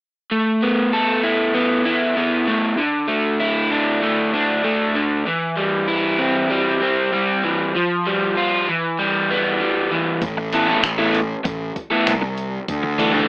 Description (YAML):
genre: indie rock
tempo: 97 BPM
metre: 4/4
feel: straight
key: A minor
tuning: A4 = 441 Hz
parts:
  - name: crunchy overdriven guitar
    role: riff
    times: 0.3-13.3 s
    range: D3 to A4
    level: -17 LUFS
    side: equal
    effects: none
  - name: fuzz picked electric bass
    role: bass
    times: 10.2-13.2 s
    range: A1 to D2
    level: -23 LUFS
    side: equal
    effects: overdrive
  - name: gated 80s digital drum machine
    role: drums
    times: 10.2-13.1 s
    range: finger snaps, hi-hat, kick drum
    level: -24 LUFS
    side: equal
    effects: none
room: light reverb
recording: rough home demo mix, AM radio sound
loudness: -17 LUFS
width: side -32 dB against mid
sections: 0.3-10.2 A section; 10.2-13.3 B section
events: none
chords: 0.3 Asus2; 2.8 Dsus2; 5.3 C/E; 7.7 Fsus2; 8.7 Em; 10.2 Asus2; 12.7 Dsus2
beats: | 0.31 0.93 1.55 2.17 | 2.79 3.41 4.03 4.65 | 5.26 5.88 6.50 7.12 | 7.74 8.36 8.98 9.60 | 10.21 10.83 11.45 12.07 | 12.69